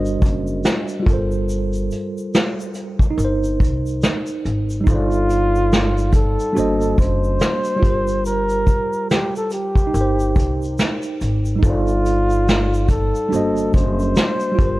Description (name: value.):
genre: lo-fi hip hop.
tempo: 71 BPM.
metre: 4/4.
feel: swing 59% on 16ths.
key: G minor.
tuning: A4 = 440 Hz.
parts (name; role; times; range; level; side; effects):
tine electric piano; accompaniment; 0.0-14.8 s; G3 to Eb5; -23 LUFS; right 2 dB; medium stereo tremolo, cassette tape.
upright bass; bass; 0.0-14.8 s; F#1 to C2; -22 LUFS; equal; none.
vintage brush drum kit; drums; 0.1-14.8 s; hi-hat, kick drum, shaker, snare drum; -18 LUFS; equal; none.
egg shaker; percussion; 0.1-14.6 s; none; -45 LUFS; left 5 dB; none.
breathy flugelhorn; melody; 4.9-14.8 s; F4 to C5; -21 LUFS; equal; none.
room: little or no reverb.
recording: cassette tape.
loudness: -16 LUFS.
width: side -18 dB against mid.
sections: 0.0-14.8 A section.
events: break 0.0-4.9.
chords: 0.0 D7b9b13; 1.1 Gm11; 3.2 Cm7/G; 4.9 F13/G; 6.6 D7b9b13; 7.8 Gm7; 9.9 Cm7/G; 11.6 F13/G; 13.3 D7b9b13.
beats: 0.65 | 1.49 2.33 3.18 4.03 | 4.87 5.71 6.56 7.41 | 8.25 9.10 9.94 10.79 | 11.63 12.48 13.32 14.17.